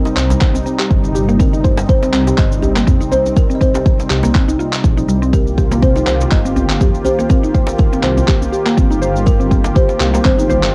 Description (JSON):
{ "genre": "afro house", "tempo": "122 BPM", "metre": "4/4", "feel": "swing 55% on 16ths", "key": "unclear", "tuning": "A4 = 440 Hz", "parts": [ { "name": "buzzing kalimba", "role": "melody", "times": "0.0-10.7 s", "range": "Bb4 to Eb5", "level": "-24 LUFS", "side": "equal", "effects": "cassette tape" }, { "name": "warm analog pad", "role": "sustained chords", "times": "0.0-10.7 s", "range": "C3 to G4", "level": "-24 LUFS", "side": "equal", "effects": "chorus, sidechain pumping, cassette tape" }, { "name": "mallet-like synth pluck", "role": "arpeggios", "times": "0.0-10.6 s", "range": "G3 to C5", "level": "-22 LUFS", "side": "equal", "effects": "chorus, sidechain pumping, cassette tape, analog delay" }, { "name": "electronic cabasa and handclaps", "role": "drums", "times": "0.1-10.7 s", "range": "none", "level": "-25 LUFS", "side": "equal", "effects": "cassette tape" }, { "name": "djembe", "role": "percussion", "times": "0.1-10.6 s", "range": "none", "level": "-26 LUFS", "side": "equal", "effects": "none" }, { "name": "dark detuned saw bass", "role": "bass", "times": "0.2-10.7 s", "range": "G1 to F2", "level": "-20 LUFS", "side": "equal", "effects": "sidechain pumping" }, { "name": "electronic kick drum", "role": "drums", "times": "0.4-10.4 s", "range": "none", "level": "-16 LUFS", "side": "equal", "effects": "cassette tape" } ], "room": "light reverb", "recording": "home recording on cassette", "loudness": "-14 LUFS", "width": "mono", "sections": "0.0-10.7 A section", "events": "none", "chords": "0.0 Eb6", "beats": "0.41 0.91 | 1.40 1.89 2.38 2.87 | 3.37 3.86 4.35 4.84 | 5.33 5.82 6.32 6.81 | 7.30 7.79 8.28 8.78 | 9.27 9.76 10.25 10.74" }